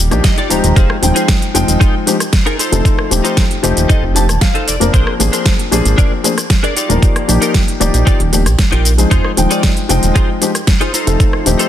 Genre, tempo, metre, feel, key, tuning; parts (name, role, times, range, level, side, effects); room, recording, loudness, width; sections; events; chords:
nu-disco, nu disco; 115 BPM; 4/4; straight; F dorian; A4 = 440 Hz
chorused synth bass; bass; 0.0-11.6 s; Eb1 to Bb1; -14 LUFS; right 1 dB; sidechain pumping
dark baby grand piano; accompaniment; 0.1-11.7 s; F3 to G5; -17 LUFS; left 3 dB; vintage 12-bit sampler grit, sidechain pumping, ping-pong delay
pop drum kit; drums; 0.1-11.7 s; hi-hat, rim click, shaker, snare drum; -18 LUFS; equal
direct-recorded clean electric guitar; riff; 0.2-11.7 s; D4 to Bb5; -20 LUFS; left 1 dB; analog chorus, ping-pong delay
electronic kick drum; drums; 0.2-11.3 s; -13 LUFS; equal; overdrive
little or no reverb; dense, heavily limited modern master; -10 LUFS; side -11 dB against mid
0.0-11.7 A section
clean electric guitar fill 0.0-0.8, 3.9-4.9
0.0 Ebmaj9; 0.8 Fm7; 2.6 F7; 4.9 Bb9; 6.8 Ebmaj9; 10.9 F7